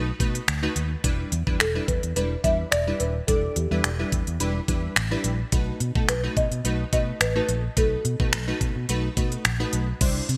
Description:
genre	dance-pop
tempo	107 BPM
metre	4/4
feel	straight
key	unclear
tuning	A4 = 439 Hz
part	wavetable chord stab	accompaniment	0.0-10.3 s	G3 to D5	-32 LUFS	equal	analog chorus, sidechain pumping
part	vintage muted fingered electric bass	bass	0.0-10.4 s	D#1 to C3	-30 LUFS	equal	sidechain pumping
part	pop drum kit	drums	0.2-10.4 s	crash cymbal, finger snaps, hi-hat, kick drum	-27 LUFS	equal	none
part	buzzing marimba with soft mallets	melody	1.6-9.4 s	G4 to E5	-30 LUFS	equal	delay
room	light reverb, digital ambience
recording	bright 1980s-style digital production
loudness	-25 LUFS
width	mono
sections	0.0-10.0 A section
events	none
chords	0.0 B7; 1.0 Em7; 5.5 B7

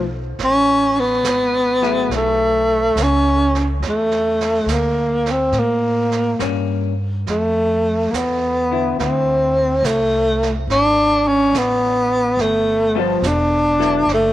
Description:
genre	jazz ballad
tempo	70 BPM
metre	4/4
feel	swing 68% on 8ths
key	unclear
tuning	A4 = 444 Hz
part	breathy tenor saxophone	melody	0.0-14.3 s	E#3 to D4	-16 LUFS	equal	none
part	vintage hollow-body jazz guitar	accompaniment	0.0-14.1 s	D3 to A4	-25 LUFS	left 14 dB	none
part	upright bass	bass	0.0-14.3 s	E1 to A2	-24 LUFS	equal	none
part	jazz brush drum kit	drums	0.4-14.3 s	brushed snare drum, hi-hat, snare drum	-30 LUFS	right 8 dB	none
room	light reverb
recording	1960s-style stereo with parts hard left and right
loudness	-15 LUFS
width	side -14 dB against mid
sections	0.0-14.3 A section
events	none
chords	0.4 F#m9; 3.8 Bbmaj7#11; 5.5 A7b9; 7.3 Dm9; 10.7 Bm13/G#; 12.4 G9

